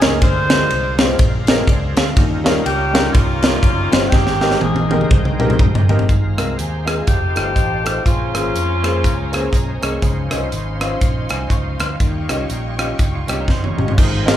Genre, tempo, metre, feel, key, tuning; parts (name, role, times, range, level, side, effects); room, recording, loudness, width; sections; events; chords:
uptempo gospel; 122 BPM; 4/4; swing 60% on 8ths; Ab major; A4 = 438 Hz
warm saxophone section; melody; 0.0-9.8 s; Ab3 to C5; -21 LUFS; left 1 dB
clear concert grand piano; accompaniment; 0.0-14.4 s; Ab2 to Db6; -23 LUFS; left 1 dB
bright tonewheel organ; sustained chords; 0.0-14.4 s; F3 to Ab5; -29 LUFS; right 1 dB; overdrive, chorus vibrato, slow rotary speaker
fingered electric bass; bass; 0.0-14.4 s; F1 to F2; -23 LUFS; equal
crisp fusion drum kit; drums; 0.0-14.4 s; crash cymbal, hi-hat, kick drum, ride cymbal, rim click, snare drum, toms; -16 LUFS; equal
warm studio string section; sustained chords; 6.1-14.0 s; Db4 to Db6; -33 LUFS; equal
clean electric guitar; second line; 13.2-14.0 s; Bb3 to Db5; -31 LUFS; right 5 dB; spring reverb
light reverb; band playing live in one room; -14 LUFS; side -11 dB against mid
0.0-6.1 A section; 6.1-14.0 B section
drum fill 4.1-6.1, 13.5-14.0; tonewheel organ fill 9.0-10.0
0.2 Bb9; 2.2 Eb9; 4.1 Abmaj9; 6.1 Ab69; 7.1 F7; 8.1 Bbm9; 10.0 Dbmaj9; 12.0 Eb9